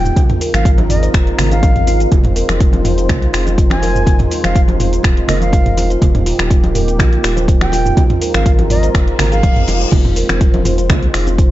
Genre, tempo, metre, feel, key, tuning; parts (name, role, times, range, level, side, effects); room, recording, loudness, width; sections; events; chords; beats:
afro house; 123 BPM; 4/4; straight; A4 = 440 Hz
breathy bright concert flute; melody; 0.0-9.8 s; Eb5 to Ab5; -23 LUFS; equal; tape echo
dark analog pad; sustained chords; 0.0-11.5 s; Ab3 to C5; -23 LUFS; equal; chorus, vintage 12-bit sampler grit, sidechain pumping
buzzing kalimba; arpeggios; 0.0-11.5 s; C4 to Eb5; -21 LUFS; right 2 dB; sidechain pumping, tape echo
warm sub bass; bass; 0.0-11.5 s; Eb1 to C2; -17 LUFS; equal; sidechain pumping
deep house drum kit; drums; 0.1-11.5 s; crash cymbal, finger snaps, hi-hat, shaker, toms; -20 LUFS; equal
electronic kick drum; drums; 0.2-11.5 s; -12 LUFS; equal
congas; percussion; 0.2-11.4 s; -22 LUFS; right 1 dB
reverse cymbal; sound effects; 9.2-9.9 s; -26 LUFS; left 6 dB
light reverb; dark, warm production, nothing above 7.7 kHz; -11 LUFS; side -15 dB against mid
0.0-11.5 A section
reverse cymbal 9.2-9.9
0.2 Ab69; 2.1 Fm7; 6.0 Eb; 8.0 Ab69
| 0.17 0.66 1.14 1.63 | 2.12 2.61 3.09 3.58 | 4.07 4.56 5.04 5.53 | 6.02 6.51 7.00 7.48 | 7.97 8.46 8.95 9.44 | 9.92 10.41 10.90 11.39